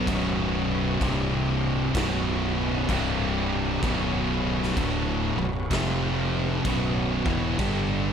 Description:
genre	stoner and doom metal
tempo	64 BPM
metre	4/4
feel	swing 65% on 8ths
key	B minor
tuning	A4 = 440 Hz
part	tonewheel organ	sustained chords	0.0-8.1 s	F3 to D5	-37 LUFS	left 1 dB	slow rotary speaker, chorus vibrato
part	high-gain distorted guitar	riff	0.0-8.1 s	B1 to G3	-30 LUFS	equal	distortion
part	thick fuzz guitar	riff	0.0-8.1 s	B1 to G3	-29 LUFS	left 8 dB	distortion
part	thick fuzz guitar	riff	0.0-8.1 s	B1 to G3	-29 LUFS	right 8 dB	distortion
part	fuzz fingered electric bass	bass	0.0-8.1 s	B0 to G1	-31 LUFS	equal	overdrive, tube saturation
part	raw garage drum kit	drums	0.1-7.9 s	crash cymbal, kick drum, snare drum	-31 LUFS	equal	none
room	little or no reverb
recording	none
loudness	-23 LUFS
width	side -7 dB against mid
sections	0.0-8.1 A section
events	none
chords	0.1 B5; 1.0 C5; 1.9 B5; 2.9 C5; 3.8 Bm; 5.7 F5; 6.6 B5; 7.6 G5

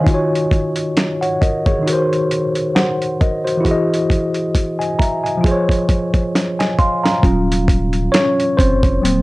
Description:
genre	lo-fi hip hop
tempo	67 BPM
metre	4/4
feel	swing 56% on 16ths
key	Eb dorian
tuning	A4 = 441 Hz
part	tine electric piano	accompaniment	0.0-9.2 s	Eb3 to C6	-16 LUFS	equal	medium stereo tremolo, cassette tape, plate reverb
part	dusty soul sampler-style drum kit	drums	0.1-9.2 s	hi-hat, kick drum, snare drum	-16 LUFS	equal	overdrive
part	saturated sub bass	bass	7.2-9.2 s	Eb1 to Gb1	-19 LUFS	equal	none
room	moderate studio reverb, RT60 0.6 s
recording	none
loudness	-14 LUFS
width	side -20 dB against mid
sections	0.0-7.2 A section; 7.2-9.2 B section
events	drum fill 3.6-7.2; tine electric piano solo 7.2-9.2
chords	0.1 Ebm9; 1.9 Ebm6; 3.6 Emaj7; 5.4 Bbm11/F (rootless); 7.2 Ebm9

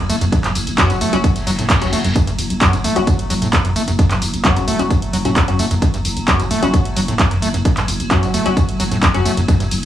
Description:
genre	driving peak-time techno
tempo	131 BPM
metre	4/4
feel	straight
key	F# minor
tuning	A4 = 440 Hz
part	overdriven acid bass	riff	0.0-9.6 s	F#1 to A3	-21 LUFS	equal	distortion, sidechain pumping, analog delay
part	swarming drone	drone	0.0-9.9 s	F#3	-26 LUFS	right 2 dB	built-in reverb, sidechain pumping
part	growling 808-style bass	bass	0.1-9.8 s	F#1	-23 LUFS	equal	overdrive, sidechain pumping, low-pass filter
part	punchy analog drum machine	drums	0.1-9.8 s	handclaps, hi-hat, ride cymbal, tambourine	-21 LUFS	right 1 dB	sidechain pumping on hats, sidechain pumping on cymbals, sidechain pumping on perc
part	electronic kick drum	drums	0.3-9.6 s	none	-16 LUFS	equal	none
part	wavetable chord stab	stabs	0.8-9.4 s	F#3 to F#4	-22 LUFS	left 3 dB	sidechain pumping, analog delay
part	reverse cymbal	sound effects	1.4-2.2 s	none	-29 LUFS	left 2 dB	none
room	digital ambience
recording	dry, gritty hardware recording, small room ambience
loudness	-14 LUFS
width	side -12 dB against mid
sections	0.0-9.9 A section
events	reverse cymbal 1.4-2.2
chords	0.0 F#5

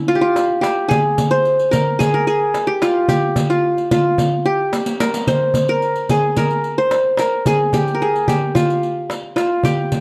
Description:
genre	Arabic maqam ensemble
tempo	110 BPM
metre	4/4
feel	straight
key	unclear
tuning	A4 = 441 Hz
part	qanun	melody	0.0-10.0 s	Db4+25c to C5	-18 LUFS	equal	none
part	riq	percussion	0.1-10.0 s	none	-29 LUFS	equal	none
part	darbuka	percussion	0.4-10.0 s	none	-24 LUFS	equal	none
room	light reverb, small room ambience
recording	dry, close 1970s-style studio recording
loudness	-17 LUFS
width	mono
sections	0.0-10.0 A section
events	drum fill 4.7-5.3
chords	none

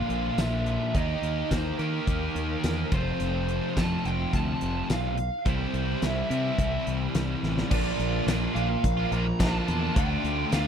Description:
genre	classic rock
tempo	106 BPM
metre	4/4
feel	straight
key	unclear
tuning	A4 = 439 Hz
part	fuzz lead guitar	melody	0.0-10.7 s	Bb4 to Bb5	-32 LUFS	right 1 dB	distortion, slapback echo
part	distorted electric guitar	riff	0.0-10.7 s	F2 to G4	-32 LUFS	right 1 dB	overdrive
part	fuzz guitar	riff	0.0-10.7 s	F2 to Eb4	-32 LUFS	equal	distortion
part	growling fingered electric bass	bass	0.1-10.7 s	F1 to Eb3	-30 LUFS	equal	overdrive
part	huge arena drum kit	drums	0.1-10.7 s	crash cymbal, hi-hat, kick drum, snare drum, tambourine	-30 LUFS	equal	none
room	little or no reverb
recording	dry, close 1970s-style studio recording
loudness	-24 LUFS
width	side -8 dB against mid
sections	0.0-7.7 A section; 7.7-10.7 B section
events	drum fill 7.4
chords	0.0 Bb; 0.9 Eb; 2.9 F; 5.5 C; 7.7 Bb; 10.0 Dm

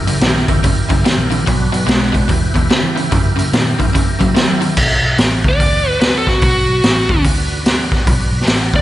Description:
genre	blues rock power trio and southern rock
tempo	146 BPM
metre	4/4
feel	swing 62% on 8ths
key	B minor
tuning	A4 = 441 Hz
part	overdriven tonewheel organ	sustained chords	0.0-8.8 s	D4 to B4	-25 LUFS	right 2 dB	slow rotary speaker, chorus vibrato
part	overdriven semi-hollow guitar	riff	0.0-4.8 s	E2 to G#3	-19 LUFS	equal	slapback echo
part	vintage muted picked electric bass	bass	0.0-8.8 s	F#1 to F#3	-19 LUFS	equal	none
part	raw garage drum kit	drums	0.1-8.8 s	crash cymbal, hi-hat, kick drum, snare drum	-14 LUFS	equal	none
part	bluesy overdriven lead guitar	melody	5.5-8.8 s	F#4 to D5	-16 LUFS	equal	distortion
room	light reverb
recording	nothing above 10.7 kHz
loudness	-12 LUFS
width	side -14 dB against mid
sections	0.0-4.8 A section; 4.8-8.8 B section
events	lead electric guitar solo 4.8-8.8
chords	0.0 F#7b9; 1.5 Bm; 2.3 Em; 3.1 F#7b9; 4.8 Bm

